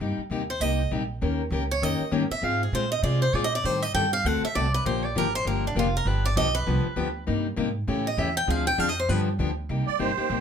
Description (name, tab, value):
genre	acoustic string swing (jazz manouche)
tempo	198 BPM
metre	4/4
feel	swing 60% on 8ths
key	C minor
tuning	A4 = 440 Hz
part	picked plugged-in steel-string acoustic guitar	accompaniment	0.0-10.4 s	C3 to Bb4	-28 LUFS	left 4 dB	none
part	upright bass	bass	0.0-10.4 s	F1 to C3	-28 LUFS	right 1 dB	none
part	picked swing-style acoustic guitar	melody	0.5-9.2 s	D4 to G5	-26 LUFS	right 1 dB	plate reverb
part	musette accordion	second line	9.9-10.4 s	C5 to D5	-26 LUFS	right 12 dB	none
room	moderate studio ambience, RT60 0.5 s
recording	none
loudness	-23 LUFS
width	side -7 dB against mid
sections	0.0-9.7 A section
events	steel-string acoustic guitar solo 0.0-9.7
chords	0.0 Cm7; 1.2 Eb7; 2.4 Ab69; 3.6 Am7b5; 4.2 D7; 4.8 Gm7; 6.1 G7; 7.3 Cm7; 7.9 A7; 8.5 Dm7b5; 9.1 G7; 9.7 Cm7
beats	| 0.00 0.30 0.61 0.91 | 1.21 1.52 1.82 2.12 | 2.43 2.73 3.03 3.33 | 3.64 3.94 4.24 4.55 | 4.85 5.15 5.46 5.76 | 6.06 6.36 6.67 6.97 | 7.27 7.57 7.88 8.18 | 8.48 8.78 9.09 9.39 | 9.69 9.99 10.30